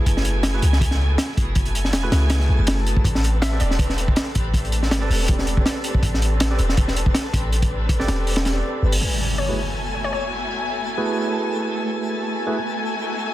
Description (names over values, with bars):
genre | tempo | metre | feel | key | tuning
drum and bass, jungle | 161 BPM | 4/4 | swing 55% on 16ths | unclear | A4 = 440 Hz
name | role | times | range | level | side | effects
dark chamber string section | sustained chords | 0.0-13.3 s | A3 to G#5 | -28 LUFS | left 1 dB | none
barky tine electric piano | stabs | 0.0-12.6 s | A3 to D5 | -29 LUFS | right 3 dB | low-pass filter, dub echo
twinkling granular texture | texture | 0.0-13.3 s | A3 to A4 | -32 LUFS | equal | built-in reverb
warm 808-style bass | bass | 0.1-9.0 s | E1 to C#2 | -21 LUFS | equal | none
crunchy breakbeat drum kit | drums | 0.1-9.0 s | hi-hat, kick drum, snare drum | -21 LUFS | equal | none
hollow square pluck | melody | 3.4-3.9, 9.4-10.2 s | C#5 to E5 | -32 LUFS | left 3 dB | chorus, dub echo
impact | sound effects | 9.0-10.5 s | none | -27 LUFS | equal | none
room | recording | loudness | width
light reverb, studio reverb | dense, heavily limited modern master | -18 LUFS | side -14 dB against mid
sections
0.0-9.0 A section; 9.0-13.3 B section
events
impact 9.0-10.5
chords
0.0 F#m11; 3.0 Am11; 9.0 F#m11